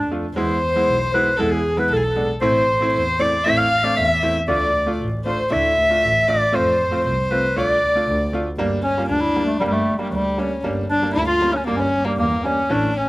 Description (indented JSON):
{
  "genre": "klezmer",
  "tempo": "117 BPM",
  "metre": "2/4",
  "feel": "straight",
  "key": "D dorian sharp4, G dorian sharp4 from 8.6 s",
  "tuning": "A4 = 438 Hz",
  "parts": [
    { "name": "breathy clarinet", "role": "melody", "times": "0.0-13.1 s", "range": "G3 to F5", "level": "-20 LUFS", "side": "equal", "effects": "slapback echo" },
    { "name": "dark violin", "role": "second line", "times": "0.0-13.1 s", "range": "G3 to F5", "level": "-24 LUFS", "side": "left 2 dB", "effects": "slapback echo" },
    { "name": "dark double bass", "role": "bass", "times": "0.0-13.0 s", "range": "G1 to F2", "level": "-26 LUFS", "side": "equal", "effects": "none" },
    { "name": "bright upright piano", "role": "accompaniment", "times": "0.1-12.9 s", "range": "E3 to F4", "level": "-25 LUFS", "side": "right 1 dB", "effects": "none" }
  ],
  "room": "little or no reverb",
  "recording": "recorded outdoors, with no room sound",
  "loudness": "-17 LUFS",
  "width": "side -20 dB against mid",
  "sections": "0.4-8.6 A section; 8.6-13.1 B section",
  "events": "none",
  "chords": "0.4 E; 2.4 Am; 4.5 Dm; 6.5 F; 7.6 Dm; 8.6 Gm"
}